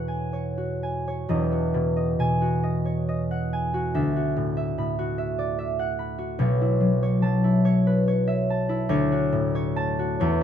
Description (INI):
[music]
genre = classical, solo harp piece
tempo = 40-50 BPM (dotted quarters)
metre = 6/8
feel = rubato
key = E mixolydian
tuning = A4 = 440 Hz
[part]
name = concert harp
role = solo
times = 0.0-10.4 s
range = E1 to B5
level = -22 LUFS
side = equal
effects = none
[sound]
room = light reverb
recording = minimal, uncompressed stereo recording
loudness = -22 LUFS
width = side -9 dB against mid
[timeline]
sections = 0.0-1.3 A section; 1.3-10.4 A section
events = none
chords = 0.0 E69; 1.3 Emaj9; 3.9 D69; 6.4 B9sus4; 8.9 Dmaj7